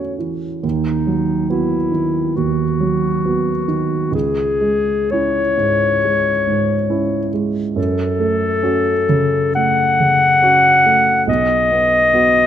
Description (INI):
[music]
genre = classical, romantic duo for clarinet and grand piano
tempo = 69 BPM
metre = 4/4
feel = rubato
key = unclear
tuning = A4 = 441 Hz
[part]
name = mellow clarinet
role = melody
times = 0.0-12.5 s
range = D#4 to F#5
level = -15 LUFS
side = left 3 dB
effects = none
[part]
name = warm grand piano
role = accompaniment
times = 0.0-12.5 s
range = B1 to F#4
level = -18 LUFS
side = right 4 dB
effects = none
[sound]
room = light reverb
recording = close, detailed microphones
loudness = -14 LUFS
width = side -10 dB against mid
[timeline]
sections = 0.0-12.5 A section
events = none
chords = 0.0 F#m7/E; 0.6 B/D#; 4.1 C#m; 7.8 F#m; 11.3 B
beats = | 0.64 1.51 2.38 3.25 | 4.14 5.12 6.03 6.91 | 7.77 8.63 9.56 10.42 | 11.28 12.14